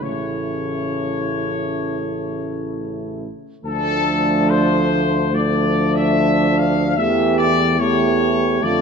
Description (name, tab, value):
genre	classical, hymn-like piece for brass band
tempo	65-74 BPM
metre	4/4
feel	rubato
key	D minor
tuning	A4 = 440 Hz
part	mellow trumpet section	melody	0.0-8.8 s	A4 to F5	-21 LUFS	left 6 dB	none
part	mellow French horn section	second line	0.0-8.8 s	D4 to G4	-22 LUFS	right 6 dB	none
part	mellow trombone	accompaniment	0.0-8.8 s	C#3 to F3	-26 LUFS	right 3 dB	none
part	warm euphonium	accompaniment	0.0-8.8 s	A3	-25 LUFS	left 4 dB	none
part	warm tuba	bass	0.0-8.8 s	A1 to F2	-24 LUFS	equal	none
room	wet concert hall reverb, RT60 1.8 s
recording	none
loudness	-16 LUFS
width	side -6 dB against mid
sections	0.0-3.6 A section; 3.6-8.8 B section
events	none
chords	0.0 A; 3.6 Dm; 7.0 A7/E